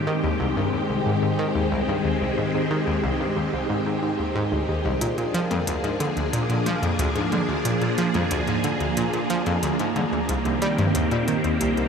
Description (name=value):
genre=ambient, sequencer-driven space music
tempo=91 BPM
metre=4/4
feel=straight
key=unclear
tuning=A4 = 440 Hz
part: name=phased string machine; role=sustained chords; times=0.0-11.9 s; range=Eb3 to Ab4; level=-24 LUFS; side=equal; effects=ensemble chorus, phaser
part: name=analog pluck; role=riff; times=0.1-11.9 s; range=C2 to G3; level=-25 LUFS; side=equal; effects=chorus, ping-pong delay
part: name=minimal click drum kit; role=percussion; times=5.0-11.9 s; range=hi-hat, toms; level=-33 LUFS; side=left 5 dB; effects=overdrive, ping-pong delay
room=wet shimmer reverb, RT60 7.8 s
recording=none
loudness=-21 LUFS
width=side -6 dB against mid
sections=0.0-11.9 A section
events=none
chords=0.0 Abmaj7; 5.0 Bb7; 10.3 Cm7